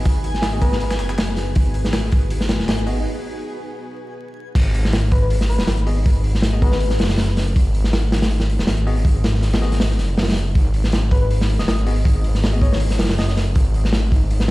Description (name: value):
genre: drum and bass, jungle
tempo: 160 BPM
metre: 4/4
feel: swing 54% on 16ths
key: G# minor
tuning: A4 = 440 Hz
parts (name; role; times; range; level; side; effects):
- detuned saw bass; bass; 0.0-14.5 s; D#1 to G#1; -19 LUFS; equal; tube saturation
- backwards swelling texture; texture; 0.0-3.1 s; G#5; -34 LUFS; equal; built-in reverb
- breakbeat sampler-style drum kit; drums; 0.1-3.0 s; hi-hat, snare drum; -36 LUFS; left 1 dB; high-pass filter on hats, high-pass filter on snare
- crunchy breakbeat drum kit; drums; 0.1-14.5 s; crash cymbal, hi-hat, kick drum, snare drum; -19 LUFS; equal; none
- bell-like tine electric piano; stabs; 0.5-3.0, 5.9-12.8 s; B3 to D#5; -31 LUFS; left 3 dB; fast stereo tremolo, vintage 12-bit sampler grit, dub echo
- soft struck synth lead; melody; 0.6-0.9, 5.1-6.9, 11.1-13.3 s; B4 to D#5; -30 LUFS; left 3 dB; chorus, vintage 12-bit sampler grit, dub echo
room: studio reverb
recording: played on a big sound system in a bare room, stone room reverb, vinyl crackle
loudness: -16 LUFS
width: side -19 dB against mid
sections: 0.0-4.6 A section; 4.6-14.5 B section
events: build-up 0.0-4.6; filter sweep on soft synth lead 0.0-4.6; break 3.1-4.6; drop 4.6-14.5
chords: 0.0 G#m7; 4.6 G#7(no3)